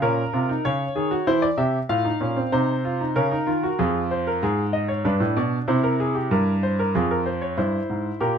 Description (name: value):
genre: classical, baroque-style 3-part fugue for grand piano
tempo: 95 BPM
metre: 3/4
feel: straight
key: unclear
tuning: A4 = 439 Hz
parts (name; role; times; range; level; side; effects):
- clear grand piano; solo; 0.0-8.4 s; F2 to F5; -20 LUFS; equal; none
room: light reverb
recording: close, detailed microphones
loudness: -20 LUFS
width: side -7 dB against mid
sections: 0.0-7.6 A section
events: none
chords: 0.0 Bbm; 1.3 C/E; 1.9 F/A; 3.2 Bbm/Db; 3.8 Fm; 5.1 G; 5.7 C; 7.0 Fm; 7.6 C7/G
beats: | 0.02 0.64 1.27 | 1.90 2.53 3.16 | 3.79 4.42 5.05 | 5.68 6.32 6.95 | 7.59 8.22